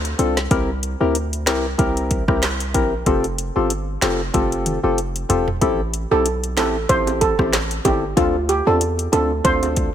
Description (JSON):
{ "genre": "dancehall", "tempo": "94 BPM", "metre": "4/4", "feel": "swing 56% on 16ths", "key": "A minor", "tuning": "A4 = 442 Hz", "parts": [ { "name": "hard-hitting 808-style bass", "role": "bass", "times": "0.0-9.9 s", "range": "E1 to E2", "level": "-24 LUFS", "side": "equal", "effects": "none" }, { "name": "afro-pop drum kit", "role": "drums", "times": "0.1-9.9 s", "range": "handclaps, hi-hat, kick drum, rim click, snare drum, toms", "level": "-22 LUFS", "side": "equal", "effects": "none" }, { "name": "percussive organ stab", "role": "accompaniment", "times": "0.2-9.9 s", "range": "C4 to Bb4", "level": "-21 LUFS", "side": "left 3 dB", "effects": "chorus" }, { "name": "steel pan", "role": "melody", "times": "6.1-9.9 s", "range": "F4 to C5", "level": "-20 LUFS", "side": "right 3 dB", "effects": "ping-pong delay" }, { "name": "bongos", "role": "percussion", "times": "6.6-9.8 s", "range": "none", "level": "-30 LUFS", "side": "right 6 dB", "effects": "none" } ], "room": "light reverb, digital ambience", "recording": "none", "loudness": "-17 LUFS", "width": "side -10 dB against mid", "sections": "0.0-5.6 A section; 5.6-9.9 B section", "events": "drum fill 4.3-5.6", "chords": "0.0 Dm7; 0.5 C7; 3.1 Fadd9; 5.6 Am7; 8.2 Dm7" }